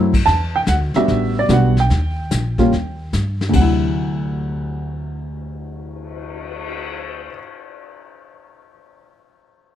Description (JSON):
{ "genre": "jazz piano trio", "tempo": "147 BPM", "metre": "4/4", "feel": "swing 67% on 8ths", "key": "D mixolydian", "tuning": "A4 = 440 Hz", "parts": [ { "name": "dark baby grand piano", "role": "melody", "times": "0.0-7.4 s", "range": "D2 to A5", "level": "-18 LUFS", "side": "equal", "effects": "none" }, { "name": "upright bass", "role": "bass", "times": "0.0-7.3 s", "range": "A1 to G2", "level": "-20 LUFS", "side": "equal", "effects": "none" }, { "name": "vintage brush drum kit", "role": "drums", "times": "0.1-6.7 s", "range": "brushed snare drum, crash cymbal, cymbal swell, hi-hat, kick drum, snare drum", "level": "-24 LUFS", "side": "left 1 dB", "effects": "none" } ], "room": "light reverb", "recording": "dark, warm production", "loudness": "-16 LUFS", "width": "side -11 dB against mid", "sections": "0.3-3.5 A section; 3.5-6.8 B section", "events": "none", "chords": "0.3 Em7; 1.9 Eb; 3.5 D9", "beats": "| 0.27 0.68 1.09 1.50 | 1.91 2.32 2.73 3.13 | 3.54 3.95 4.36 4.77 | 5.18 5.59 6.00 6.40" }